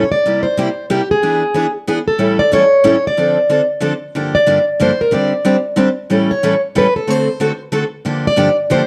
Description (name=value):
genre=jazz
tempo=184 BPM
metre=3/4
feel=swing 59% on 8ths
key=D minor, G minor from 4.1 s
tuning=A4 = 440 Hz
part: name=picked plugged-in steel-string acoustic guitar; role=melody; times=0.0-8.9 s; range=G4 to D5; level=-16 LUFS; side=equal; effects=none
part: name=picked steel-string acoustic guitar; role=accompaniment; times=0.0-8.8 s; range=G2 to A4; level=-18 LUFS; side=equal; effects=none
room=moderate studio reverb, RT60 0.7 s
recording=dark, warm production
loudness=-15 LUFS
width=mono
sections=0.0-4.1 A section; 4.1-8.9 B section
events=none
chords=0.2 C7; 1.2 E7; 2.2 A7; 3.2 Dm7; 4.1 Gm7; 5.1 D7sus4; 6.1 A7; 7.1 D7; 8.1 Gm7